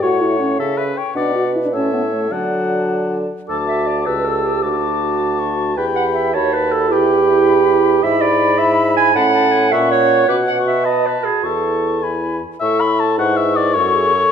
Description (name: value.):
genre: quick classical-period movement for wind quintet.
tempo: 105 BPM (dotted quarters).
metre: 6/8.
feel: straight.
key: D major, A major from 8.0 s.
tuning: A4 = 441 Hz.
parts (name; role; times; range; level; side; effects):
hollow concert flute; melody; 0.0-14.3 s; E5 to E6; -23 LUFS; left 9 dB; none.
warm oboe; second line; 0.0-14.3 s; A4 to B5; -21 LUFS; left 4 dB; none.
mellow French horn; accompaniment; 0.0-14.3 s; F#3 to A4; -23 LUFS; left 2 dB; none.
warm clarinet; accompaniment; 0.0-14.3 s; F#4 to G#5; -18 LUFS; right 6 dB; none.
mellow bassoon; bass; 0.0-14.3 s; C#2 to D3; -20 LUFS; right 1 dB; none.
room: wet recital hall reverb, RT60 1.5 s.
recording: none.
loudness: -14 LUFS.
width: side -7 dB against mid.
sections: 0.0-3.5 A section; 3.5-12.6 A section; 12.6-14.3 B section.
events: none.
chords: 0.0 A; 1.2 Bm; 1.7 A; 2.3 D; 4.1 A7/C#; 4.6 D; 5.8 Em; 6.3 B7/D#; 6.9 Em; 8.0 E7/G#; 9.2 A; 9.7 F#/A#; 10.3 B5; 11.4 A/E; 12.0 E; 12.6 A; 13.8 F#m.